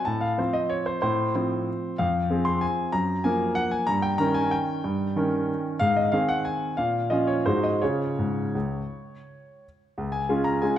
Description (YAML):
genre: classical, piano waltz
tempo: 160-197 BPM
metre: 3/4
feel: rubato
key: Db major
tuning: A4 = 440 Hz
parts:
  - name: bright concert grand piano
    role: solo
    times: 0.0-10.8 s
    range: Db2 to C6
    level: -23 LUFS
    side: equal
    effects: none
room: moderate recital hall reverb, RT60 1.6 s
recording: dark, warm production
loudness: -23 LUFS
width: side -11 dB against mid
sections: 0.0-10.0 A section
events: none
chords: 0.1 F/A; 2.0 Fm; 2.9 Gbmaj7; 3.9 Eb7/G; 5.8 Ab; 6.8 Bbm; 7.5 Ab7; 7.8 Db